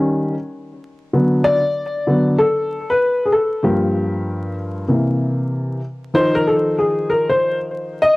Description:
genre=hip hop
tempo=96 BPM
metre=4/4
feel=swing 63% on 16ths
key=unclear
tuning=A4 = 439 Hz
part: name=dark upright piano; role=solo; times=0.0-8.2 s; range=G2 to Eb5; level=-16 LUFS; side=left 1 dB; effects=cassette tape
room=moderate booth ambience, RT60 0.2 s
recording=home recording on cassette, vinyl crackle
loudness=-16 LUFS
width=side -21 dB against mid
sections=0.0-6.1 A section; 6.1-8.2 B section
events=upright piano solo 0.0-6.1, 6.1-8.2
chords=0.0 Eb7; 1.1 D6; 3.6 Gm7; 4.9 C7; 6.1 Ebsus4

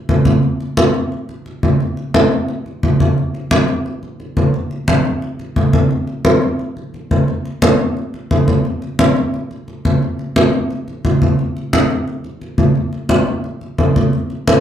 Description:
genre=latin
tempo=175 BPM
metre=4/4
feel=straight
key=none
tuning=none
part: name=congas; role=percussion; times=0.1-14.6 s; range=none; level=-14 LUFS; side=equal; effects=none
room=wet studio reverb, RT60 0.6 s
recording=heard from further back in the room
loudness=-14 LUFS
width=side -10 dB against mid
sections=0.0-4.5 A section; 4.5-14.6 A section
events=none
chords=none

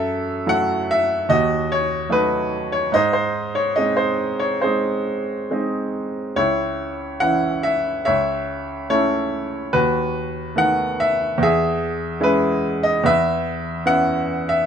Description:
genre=classical, lyrical solo piano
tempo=72 BPM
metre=4/4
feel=rubato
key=C# minor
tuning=A4 = 440 Hz
part: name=bright baby grand piano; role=solo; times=0.0-14.7 s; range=C#2 to F#5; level=-18 LUFS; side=equal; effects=none
room=light reverb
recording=close, detailed microphones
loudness=-18 LUFS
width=side -8 dB against mid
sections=0.0-14.7 A section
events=none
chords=0.0 F#m7; 1.3 D#dim; 2.9 G#; 6.4 C#m; 8.1 A/C#; 9.7 B7/D#; 11.4 E6; 13.0 C#m7/E

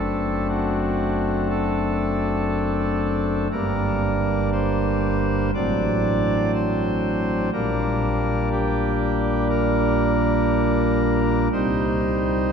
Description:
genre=classical, chorale-style piece for pipe organ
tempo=60 BPM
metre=4/4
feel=rubato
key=G minor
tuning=A4 = 440 Hz
part: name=pipe organ, cornet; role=solo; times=0.0-12.5 s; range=F#1 to D5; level=-20 LUFS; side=equal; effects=none
room=wet cathedral reverb, RT60 4.4 s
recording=dark, warm production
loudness=-20 LUFS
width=side -7 dB against mid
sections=0.0-12.5 A section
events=none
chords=0.0 D7/F#; 3.5 Gm; 5.5 D7/A; 7.5 Gm/Bb; 11.5 Cm

